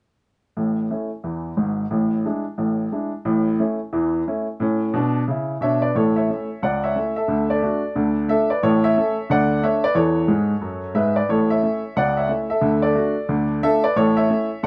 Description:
jazz, stride piano; 180 BPM; 4/4; swing 61% on 8ths; A major; A4 = 440 Hz
clear upright piano; solo; 0.6-14.7 s; G#1 to F#5; -21 LUFS; equal
light reverb; nothing above 10.4 kHz; -21 LUFS; mono
0.6-5.9 A section; 5.9-14.7 B section
upright piano fill 10.3-11.3
0.6 A; 1.9 E7/A; 3.3 A; 6.6 A/C#; 7.3 D; 8.0 Dm; 8.6 A; 9.3 D; 10.0 A/E; 10.6 F#m11; 11.3 A; 12.0 A/C#; 12.6 D; 13.3 Dm; 13.9 A

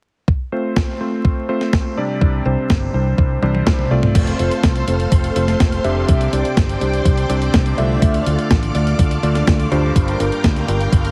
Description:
italo disco; 124 BPM; 4/4; straight; F major; A4 = 440 Hz
electronic kick drum; drums; 0.3-11.0 s; -19 LUFS; equal
warm electric grand piano; stabs; 0.5-11.1 s; G2 to E5; -23 LUFS; equal; low-pass filter, delay
clean 12-bit digital drum machine; drums; 0.8-11.1 s; crash cymbal, hi-hat, snare drum, toms; -25 LUFS; equal
fingered electric bass; bass; 2.2-11.1 s; F1 to D2; -22 LUFS; equal
string machine, full ensemble; sustained chords; 4.2-11.1 s; A4 to D6; -27 LUFS; equal; ensemble chorus, vintage 12-bit sampler grit
light reverb, digital ambience; heavily compressed radio sound, multiband compression, vinyl crackle; -17 LUFS; mono
0.3-4.2 A section; 4.2-11.1 B section
drum fill 3.4-4.2
0.3 F; 2.2 Csus2; 4.2 F; 6.1 Csus2; 8.0 Dm; 10.0 Gm7

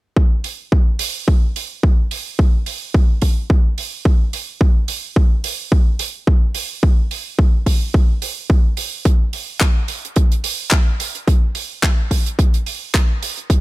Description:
nu-disco; 108 BPM; 4/4; swing 56% on 16ths
electronic kick drum; drums; 0.2-13.6 s; -14 LUFS; equal; overdrive
damped 70s drum kit; drums; 0.4-13.6 s; handclaps, hi-hat; -23 LUFS; right 3 dB
little or no reverb; -15 LUFS; side -19 dB against mid
0.2-13.6 A section

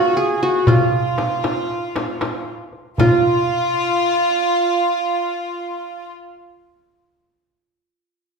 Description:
Turkish makam ensemble; 233 BPM (eighths); 9/8; straight; F makam kurdi; A4 = 438 Hz
qanun; melody; 0.0-6.6 s; F4 to Bb4; -19 LUFS; right 2 dB
warm symphonic violin section; second line; 0.0-6.1 s; F4 to Ab4; -20 LUFS; equal
darbuka; percussion; 0.7-3.2 s; -22 LUFS; equal
frame drum; percussion; 0.7-3.2 s; -23 LUFS; left 3 dB
wet recital hall reverb, RT60 1.4 s; recorded in a church or concert hall; -16 LUFS; side -5 dB against mid
0.0-3.0 A section; 3.0-5.3 B section

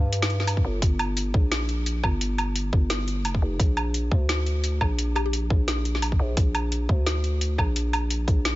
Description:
half-time drum and bass; 173 BPM; 4/4; swing 56% on 16ths, half-time; A4 = 441 Hz
growling 808-style bass; bass; 0.0-8.6 s; F1 to G2; -25 LUFS; equal; tube saturation
drum and bass drum kit; drums; 0.1-8.5 s; hi-hat, snare drum, woodblock; -28 LUFS; equal
electronic kick drum; drums; 0.6-8.4 s; -22 LUFS; equal
mallet-like synth pluck; melody; 5.2-5.3 s; G4; -38 LUFS; left 7 dB
little or no reverb; nothing above 7.7 kHz; -22 LUFS; side -17 dB against mid
0.0-8.6 A section
0.0 Gm; 3.6 Bb

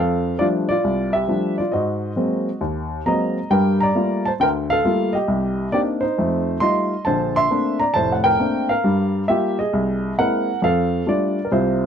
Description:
solo jazz; 135 BPM; 4/4; swing 67% on 8ths; F major; A4 = 440 Hz
warm upright piano; solo; 0.0-11.9 s; F1 to C6; -18 LUFS; equal
light reverb; dark, warm production; -18 LUFS; side -8 dB against mid
0.0-11.9 A section
0.0 F69; 1.7 Ab9; 3.5 Gm9; 5.3 Cm9; 6.2 F9; 7.1 Bbmaj9; 8.8 Gm7; 9.7 C7alt; 10.6 F69

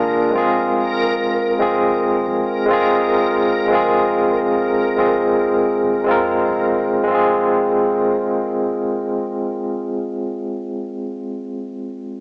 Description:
trip hop; 71 BPM; 4/4; swing 58% on 16ths; F minor; A4 = 439 Hz
barky tine electric piano; accompaniment; 0.0-12.2 s; Ab3 to Bb4; -16 LUFS; equal; medium stereo tremolo, cassette tape
soft 808-style bass; bass; 0.0-9.6 s; Eb1 to F2; -41 LUFS; equal
backwards swelling texture; texture; 0.0-7.1 s; Bb4; -24 LUFS; equal; built-in reverb, cassette tape
moderate lush hall reverb, RT60 2.7 s; home recording on cassette, small speaker sound; -15 LUFS; side -33 dB against mid
0.0-7.1 A section; 7.1-10.5 B section
0.3 Fm

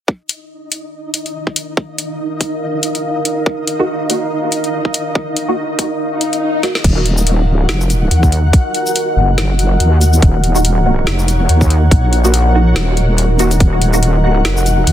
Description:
deep dubstep; 142 BPM; 4/4; swing 56% on 16ths, half-time; Eb minor; A4 = 440 Hz
deep dark ambient pad; sustained chords; 1.4-14.9 s; Eb4 to Gb5; -20 LUFS; equal; chorus, built-in reverb
electronic kick drum; drums; 0.1-13.7 s; -12 LUFS; equal; high-pass filter on kick
flickering grainy texture; texture; 0.6-14.9 s; Eb4 to Gb5; -23 LUFS; left 1 dB; built-in reverb
garage drum kit; drums; 0.3-14.9 s; crash cymbal, hi-hat, shaker, snare drum; -20 LUFS; left 1 dB
filtered dub chord stab; stabs; 3.8-6.7, 10.6-14.3 s; Bb3 to Gb4; -20 LUFS; right 1 dB; phaser, ensemble chorus, dub echo
swell; sound effects; 6.1-6.8 s; -22 LUFS; left 3 dB
wobble bass; bass; 6.8-14.9 s; Eb1 to Eb2; -12 LUFS; equal; chorus
light reverb, digital ambience; dense, heavily limited modern master; -12 LUFS; side -11 dB against mid
0.1-6.8 A section; 6.8-14.9 B section
filter sweep on ambient pad 0.1-6.8; swell 6.1-6.8; drum fill 6.6
0.1 Eb5; 6.8 Ebm

